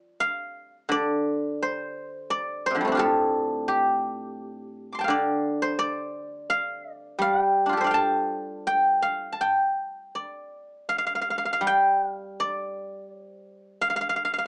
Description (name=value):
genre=chinese traditional, Chinese solo plucked strings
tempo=79-88 BPM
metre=4/4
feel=rubato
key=D yu mode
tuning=A4 = 440 Hz
part: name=guzheng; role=solo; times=0.0-14.5 s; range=A2 to D6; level=-23 LUFS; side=equal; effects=none
room=moderate small room reverb, RT60 0.5 s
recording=small speaker sound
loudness=-22 LUFS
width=side -29 dB against mid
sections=0.0-10.9 A section; 10.9-14.5 B section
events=none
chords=none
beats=0.18 0.91 1.61 | 2.31 3.02 3.70 4.39 | 5.08 5.78 6.49 7.20 | 7.92 8.64 9.38 10.13 | 10.88 11.63 12.36 13.08 | 13.79